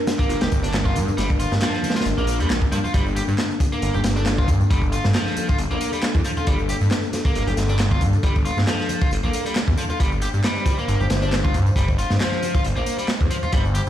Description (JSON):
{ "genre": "breakbeat, breaks", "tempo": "136 BPM", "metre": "4/4", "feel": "swing 55% on 16ths", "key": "G minor", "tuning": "A4 = 442 Hz", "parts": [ { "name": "dark analog pad", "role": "sustained chords", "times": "0.0-13.9 s", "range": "Bb3 to C5", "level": "-28 LUFS", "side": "left 2 dB", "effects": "chorus, vintage 12-bit sampler grit, sidechain pumping" }, { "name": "crunchy breakbeat drum kit", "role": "drums", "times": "0.1-13.9 s", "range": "hi-hat, kick drum, snare drum", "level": "-22 LUFS", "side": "equal", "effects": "none" }, { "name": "electronic tambourine and handclaps", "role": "drums", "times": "0.1-13.9 s", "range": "none", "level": "-34 LUFS", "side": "left 1 dB", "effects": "none" }, { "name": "congas", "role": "percussion", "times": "0.1-13.5 s", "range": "none", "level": "-32 LUFS", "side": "right 2 dB", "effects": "none" }, { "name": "biting overdriven guitar", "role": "riff", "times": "0.2-13.8 s", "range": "F3 to G4", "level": "-27 LUFS", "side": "equal", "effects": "tube saturation, vintage 12-bit sampler grit, dub echo" }, { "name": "phased detuned saw bass", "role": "bass", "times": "0.3-13.9 s", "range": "G1 to G2", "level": "-22 LUFS", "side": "equal", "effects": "phaser" } ], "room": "studio reverb", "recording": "played on a big sound system in a bare room, stone room reverb", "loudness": "-18 LUFS", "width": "side -11 dB against mid", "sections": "0.0-13.9 A section", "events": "none", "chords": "0.0 Gm" }